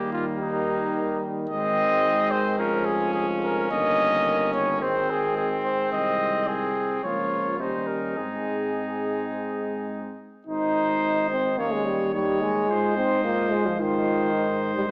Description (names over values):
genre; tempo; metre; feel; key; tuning
classical, brass quintet; 108 BPM; 4/4; rubato; Ab major; A4 = 440 Hz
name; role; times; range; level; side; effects
warm trumpet; melody; 0.0-14.9 s; Eb4 to Eb5; -29 LUFS; equal; none
bright trumpet; second line; 0.0-14.9 s; Bb3 to Db5; -32 LUFS; equal; none
warm French horn; accompaniment; 0.0-14.9 s; G3 to F4; -35 LUFS; equal; none
warm trombone; accompaniment; 0.0-14.8 s; Eb3 to Eb4; -30 LUFS; equal; none
mellow tuba; bass; 0.0-14.9 s; F1 to Ab2; -35 LUFS; equal; none
room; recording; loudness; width
moderate scoring stage reverb, RT60 1.8 s; small speaker sound; -25 LUFS; mono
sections
0.0-10.5 A section; 10.5-14.9 B section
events
none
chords
0.0 Eb; 1.5 Ab; 2.6 Db/F; 3.7 Eb7/G; 4.8 Ab; 5.9 Ab/C; 7.0 Bbm/Db; 7.6 Eb7; 8.2 Ab; 11.6 Eb7; 12.7 Ab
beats
0.41 0.96 | 1.50 2.04 2.58 3.13 | 3.71 4.27 4.82 5.36 | 5.91 6.47 7.03 7.59 | 8.17 8.75 9.32 9.90 | 10.47 11.03 11.59 12.14 | 12.70 13.25 13.80 14.34 | 14.89